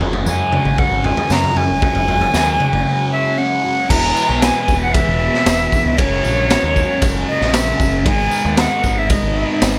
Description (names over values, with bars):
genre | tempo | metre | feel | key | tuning
psychedelic rock | 116 BPM | 4/4 | straight | unclear | A4 = 436 Hz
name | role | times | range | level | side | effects
combo organ | sustained chords | 0.0-9.8 s | G#3 to C#5 | -30 LUFS | equal | none
thick fuzz guitar | riff | 0.0-9.8 s | E2 to G#3 | -24 LUFS | equal | distortion, phaser
growling picked electric bass | bass | 0.0-9.8 s | E1 to F#2 | -24 LUFS | equal | overdrive
raw garage drum kit | drums | 0.0-9.7 s | crash cymbal, kick drum, ride cymbal, snare drum, toms | -21 LUFS | equal | none
bright silver concert flute | melody | 0.3-9.8 s | C#5 to A#5 | -21 LUFS | equal | slapback echo
tambourine | percussion | 0.3-9.7 s | none | -34 LUFS | equal | none
room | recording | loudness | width
light reverb, small room ambience | none | -16 LUFS | mono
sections
0.0-3.9 A section; 3.9-9.8 B section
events
break 2.9-3.9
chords
0.0 F#sus2; 3.9 E; 6.0 F#add9; 8.1 G#madd9